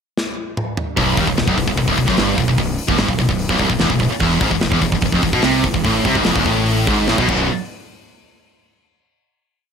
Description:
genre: heavy metal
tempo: 147 BPM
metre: 4/4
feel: straight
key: unclear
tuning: A4 = 440 Hz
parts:
  - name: tight metal drum kit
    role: drums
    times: 0.2-7.4 s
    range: crash cymbal, hi-hat, kick drum, snare drum, toms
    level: -21 LUFS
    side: left 1 dB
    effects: none
  - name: fuzz guitar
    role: riff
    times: 1.0-7.5 s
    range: B1 to C3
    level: -21 LUFS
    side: equal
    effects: distortion
  - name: heavy high-gain guitar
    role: riff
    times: 1.0-7.5 s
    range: B1 to C3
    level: -21 LUFS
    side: left 11 dB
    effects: distortion
  - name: heavy high-gain guitar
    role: riff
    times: 1.0-7.5 s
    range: B1 to C3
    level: -20 LUFS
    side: right 9 dB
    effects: distortion
  - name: fuzz fingered electric bass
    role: bass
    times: 1.0-7.5 s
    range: B0 to C2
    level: -23 LUFS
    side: equal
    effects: overdrive
room: small room ambience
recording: none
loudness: -15 LUFS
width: side -6 dB against mid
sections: 0.0-1.0 pickup bar; 1.0-7.5 riff; 7.5-9.1 final hit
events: drum fill 0.2-1.0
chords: 0.0 N.C.; 1.0 B; 4.2 E5; 7.3 B5; 7.5 N.C.

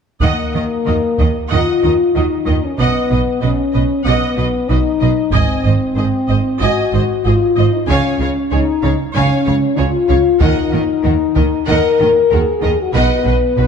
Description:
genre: cinematic, epic orchestral film score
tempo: 94 BPM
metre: 4/4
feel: straight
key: Eb minor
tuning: A4 = 440 Hz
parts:
  - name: rich chamber violin section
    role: melody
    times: 0.2-13.6 s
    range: Bb4 to Ab5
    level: -28 LUFS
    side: left 4 dB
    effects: none
  - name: rich symphonic violin section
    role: second line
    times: 0.2-13.7 s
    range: Gb4 to F5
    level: -26 LUFS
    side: right 1 dB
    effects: none
  - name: rich symphonic viola section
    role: accompaniment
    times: 0.2-13.7 s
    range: Bb4 to Eb5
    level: -25 LUFS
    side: right 2 dB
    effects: none
  - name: dark French horn section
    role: sustained chords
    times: 0.2-13.7 s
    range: Bb3 to Bb4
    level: -16 LUFS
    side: left 4 dB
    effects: none
  - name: rich symphonic cello section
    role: bass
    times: 0.2-13.6 s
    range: Ab2 to Eb3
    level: -21 LUFS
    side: right 4 dB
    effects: none
  - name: rich symphonic double bass section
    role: bass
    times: 0.2-13.7 s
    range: Ab1 to Eb2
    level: -18 LUFS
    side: right 4 dB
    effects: none
  - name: taiko ensemble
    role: drums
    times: 0.2-11.7 s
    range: none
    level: -18 LUFS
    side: right 1 dB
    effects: none
room: moderate scoring stage reverb, RT60 1.7 s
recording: dark, warm production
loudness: -12 LUFS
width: side -6 dB against mid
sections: 0.2-13.7 A section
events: none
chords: 0.2 Ebm; 2.8 B; 5.3 Ab; 7.9 Db; 10.4 Ebm; 12.9 B

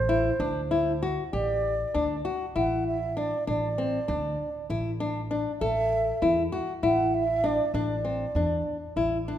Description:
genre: contemporary instrumental, chamber music in an uneven meter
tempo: 196 BPM (eighths)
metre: 7/8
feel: straight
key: A dorian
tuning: A4 = 444 Hz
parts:
  - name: mellow baroque flute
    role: melody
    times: 0.0-8.9 s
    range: C5 to F#5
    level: -29 LUFS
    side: right 3 dB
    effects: none
  - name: upright bass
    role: bass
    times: 0.0-9.4 s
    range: A1 to E2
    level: -32 LUFS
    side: right 1 dB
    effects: none
  - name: nylon-string guitar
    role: arpeggios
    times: 0.1-9.4 s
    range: C4 to A4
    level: -28 LUFS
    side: left 3 dB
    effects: none
room: light reverb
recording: minimal, uncompressed stereo recording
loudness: -25 LUFS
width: side -10 dB against mid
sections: 0.0-1.3 A section; 1.3-9.4 B section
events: none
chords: 0.0 D7; 1.3 N.C.; 5.6 A5

